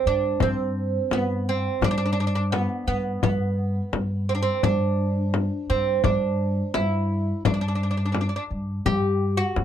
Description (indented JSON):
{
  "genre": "Arabic maqam ensemble",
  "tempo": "85 BPM",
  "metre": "4/4",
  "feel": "straight",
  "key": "G maqam ajam",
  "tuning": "A4 = 440 Hz",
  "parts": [
    { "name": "oud", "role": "melody", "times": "0.0-9.6 s", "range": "B3 to G4", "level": "-25 LUFS", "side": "right 3 dB", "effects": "none" },
    { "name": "upright bass", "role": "bass", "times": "0.1-9.6 s", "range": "G2", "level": "-25 LUFS", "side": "equal", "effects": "none" },
    { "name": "frame drum", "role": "percussion", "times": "0.4-9.6 s", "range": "none", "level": "-25 LUFS", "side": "left 5 dB", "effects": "none" }
  ],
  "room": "little or no reverb",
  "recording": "close, detailed microphones",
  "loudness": "-22 LUFS",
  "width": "side -10 dB against mid",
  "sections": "0.0-9.6 A section",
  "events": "none",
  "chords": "none"
}